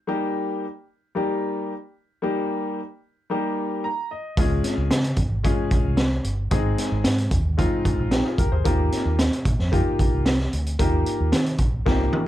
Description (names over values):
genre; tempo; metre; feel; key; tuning
uptempo 1960s-style soul; 112 BPM; 4/4; straight; unclear; A4 = 440 Hz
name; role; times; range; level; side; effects
warm upright piano; accompaniment; 0.1-12.3 s; G3 to Bb5; -25 LUFS; left 2 dB; none
vintage muted fingered electric bass; bass; 4.4-12.2 s; G1 to Eb3; -24 LUFS; equal; none
raw garage drum kit; drums; 4.4-12.3 s; hi-hat, kick drum, snare drum, toms; -22 LUFS; equal; none
room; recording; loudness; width
light reverb; dark, warm production; -20 LUFS; side -13 dB against mid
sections
0.0-12.3 A section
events
upright piano fill 3.6-4.4; drum fill 11.9-12.3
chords
0.1 Eb; 4.4 Db; 6.5 Ab; 8.7 Ebadd9